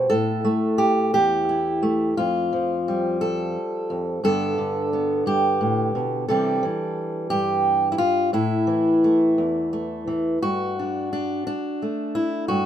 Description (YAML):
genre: folk, solo fingerstyle acoustic guitar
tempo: 58 BPM (dotted quarters)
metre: 6/8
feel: straight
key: unclear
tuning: A4 = 440 Hz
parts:
  - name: fingerpicked steel-string acoustic guitar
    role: solo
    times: 0.0-12.7 s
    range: E2 to C5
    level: -20 LUFS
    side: equal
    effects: none
room: light reverb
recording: minimal, uncompressed stereo recording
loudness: -20 LUFS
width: side -10 dB against mid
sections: 0.0-10.4 A section; 10.4-12.7 B section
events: none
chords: 0.1 A5; 2.2 Fadd9; 4.2 G; 6.3 Cadd9; 8.3 A5; 10.4 D/G